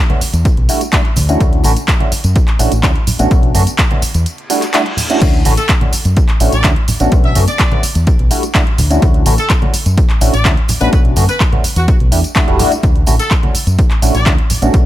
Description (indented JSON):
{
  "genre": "filtered disco house",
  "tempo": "126 BPM",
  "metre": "4/4",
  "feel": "straight",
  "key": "D major",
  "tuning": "A4 = 440 Hz",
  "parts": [
    { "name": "barky tine electric piano", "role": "accompaniment", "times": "0.1-14.9 s", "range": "G3 to G4", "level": "-18 LUFS", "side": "equal", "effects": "medium stereo tremolo, phaser, sidechain pumping" },
    { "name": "house drum kit", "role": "drums", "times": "0.1-14.8 s", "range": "crash cymbal, handclaps, hi-hat, tambourine", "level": "-19 LUFS", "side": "equal", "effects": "overdrive, sidechain pumping on hats, sidechain pumping on perc, sidechain pumping on cymbals" },
    { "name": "congas and tambourine", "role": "percussion", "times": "0.1-14.8 s", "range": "none", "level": "-23 LUFS", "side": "right 2 dB", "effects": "sidechain pumping on perc" },
    { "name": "deep dub fingered electric bass", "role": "bass", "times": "0.2-14.9 s", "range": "E1 to F#2", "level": "-14 LUFS", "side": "equal", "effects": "tube saturation, sidechain pumping" },
    { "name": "electronic kick drum", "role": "drums", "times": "0.5-14.8 s", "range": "none", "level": "-13 LUFS", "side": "equal", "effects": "none" },
    { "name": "reverse cymbal", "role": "sound effects", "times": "4.4-5.2 s", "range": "none", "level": "-26 LUFS", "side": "left 1 dB", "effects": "none" },
    { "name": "brilliant horn section", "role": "melody", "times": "5.6-14.3 s", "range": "F#4 to E5", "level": "-22 LUFS", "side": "left 1 dB", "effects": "sidechain pumping, digital delay" }
  ],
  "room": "digital ambience",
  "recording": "none",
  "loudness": "-10 LUFS",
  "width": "side -14 dB against mid",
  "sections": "0.0-14.9 A section",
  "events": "break 4.3-5.2; reverse cymbal 4.4-5.2",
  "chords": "0.2 Em11; 1.4 Dmaj9; 3.3 Bm9; 4.0 Em11; 5.2 Dmaj9; 7.1 Bm9; 7.8 Em11; 9.0 Dmaj9; 10.9 Bm9; 11.6 Em11; 12.8 Dmaj9"
}